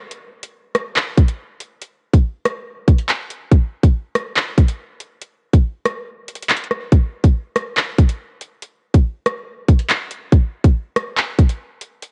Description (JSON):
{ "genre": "hip hop", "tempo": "141 BPM", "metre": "4/4", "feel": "half-time", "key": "none", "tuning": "none", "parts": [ { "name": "drill drum kit", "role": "drums", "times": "0.1-12.1 s", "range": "handclaps, hi-hat, kick drum, rim click", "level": "-16 LUFS", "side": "equal", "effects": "cassette tape" } ], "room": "little or no reverb", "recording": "home recording on cassette", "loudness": "-18 LUFS", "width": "mono", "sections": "0.0-12.1 A section", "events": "kick muted 0.1-1.0; break 6.1-6.9", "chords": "none" }